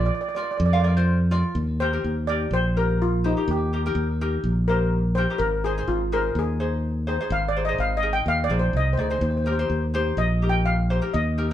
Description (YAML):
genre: calypso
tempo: 125 BPM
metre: 4/4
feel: straight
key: Eb major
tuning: A4 = 440 Hz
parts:
  - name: steel pan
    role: melody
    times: 0.0-11.5 s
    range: Eb4 to G5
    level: -26 LUFS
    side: left 1 dB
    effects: none
  - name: ukulele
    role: accompaniment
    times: 0.0-11.5 s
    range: Eb4 to F5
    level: -29 LUFS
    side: left 2 dB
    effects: none
  - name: modern bright fingered electric bass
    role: bass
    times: 0.0-11.5 s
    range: Ab1 to F2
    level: -23 LUFS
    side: equal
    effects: none
room: wet studio reverb, RT60 0.7 s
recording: band playing live in one room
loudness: -21 LUFS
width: side -11 dB against mid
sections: 0.0-1.6 A section; 1.6-11.5 B section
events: steel pan solo 1.6-11.5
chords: 0.0 Bbadd9; 1.6 Eb; 5.4 Ab; 9.2 Eb